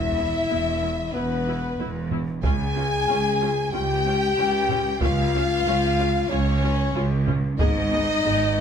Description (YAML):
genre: cinematic, epic orchestral film score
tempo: 93 BPM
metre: 4/4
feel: straight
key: unclear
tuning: A4 = 438 Hz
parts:
  - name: rich studio violin section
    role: melody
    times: 0.0-8.6 s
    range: B4 to Ab5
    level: -32 LUFS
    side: left 1 dB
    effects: none
  - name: mellow hollow silver concert flute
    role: second line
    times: 0.0-8.6 s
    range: B4 to Ab5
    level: -30 LUFS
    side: left 2 dB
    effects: none
  - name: warm symphonic violin section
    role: second line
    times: 0.0-8.6 s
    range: B4 to Ab5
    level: -30 LUFS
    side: equal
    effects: none
  - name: mellow French horn section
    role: sustained chords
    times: 0.0-8.6 s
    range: B3 to Ab4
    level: -26 LUFS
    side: left 6 dB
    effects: none
  - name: rich symphonic cello section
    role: bass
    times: 0.0-8.6 s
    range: Db2 to Ab2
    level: -29 LUFS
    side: right 2 dB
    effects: none
  - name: rich symphonic double bass section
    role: bass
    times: 0.0-8.6 s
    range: E1 to Db2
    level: -27 LUFS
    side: right 3 dB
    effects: none
  - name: dark symphonic viola section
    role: accompaniment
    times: 0.2-8.6 s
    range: B3 to Ab4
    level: -34 LUFS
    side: right 1 dB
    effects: none
  - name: taiko ensemble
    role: drums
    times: 2.1-8.2 s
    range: none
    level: -27 LUFS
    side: right 1 dB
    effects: none
room: moderate recital hall reverb, RT60 1.4 s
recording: none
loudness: -20 LUFS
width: side -7 dB against mid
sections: 0.0-8.6 A section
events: none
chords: 0.0 E5; 2.4 Db; 7.6 Abm